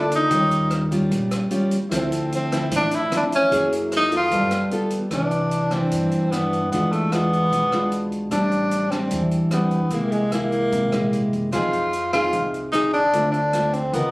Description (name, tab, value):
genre	bossa nova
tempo	150 BPM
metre	4/4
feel	straight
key	C major from 5.1 s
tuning	A4 = 440 Hz
part	breathy tenor saxophone	melody	0.0-14.1 s	G#3 to F4	-21 LUFS	equal	plate reverb
part	clear concert grand piano	accompaniment	0.0-5.1, 11.5-14.1 s	E4 to E5	-33 LUFS	right 1 dB	none
part	nylon-string guitar	accompaniment	0.0-14.1 s	G2 to Bb4	-22 LUFS	equal	none
part	open jazz drum kit	drums	0.1-14.0 s	hi-hat, kick drum, rim click	-33 LUFS	equal	none
part	upright bass	bass	0.3-14.1 s	F#1 to G2	-32 LUFS	equal	none
room	moderate studio reverb, RT60 0.8 s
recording	recorded on a phone in the room, club reverb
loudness	-19 LUFS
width	side -22 dB against mid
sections	0.0-5.1 A section; 5.1-14.1 B section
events	none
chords	0.3 Eb9; 1.9 Dm9; 3.5 Gb9; 4.3 G9; 5.1 Cmaj9; 6.7 E7b9; 8.3 Am11; 9.9 Caug7; 11.5 Fm7; 13.1 Dm7